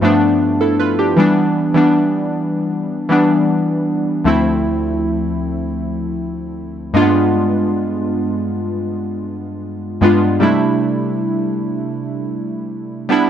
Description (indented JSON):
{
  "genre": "R&B",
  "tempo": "78 BPM",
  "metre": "4/4",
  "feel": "straight",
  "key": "unclear",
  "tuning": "A4 = 441 Hz",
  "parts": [
    { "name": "warm analog keys", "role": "solo", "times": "0.0-13.3 s", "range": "D2 to B4", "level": "-15 LUFS", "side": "equal", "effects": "chorus" }
  ],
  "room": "light reverb",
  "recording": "nothing above 10.7 kHz",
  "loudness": "-14 LUFS",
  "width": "side -9 dB against mid",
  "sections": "0.0-4.3 A section; 4.3-13.3 B section",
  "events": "none",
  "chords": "0.0 G7; 1.2 Em7; 4.3 Dm7; 7.0 G7b9; 10.4 C6"
}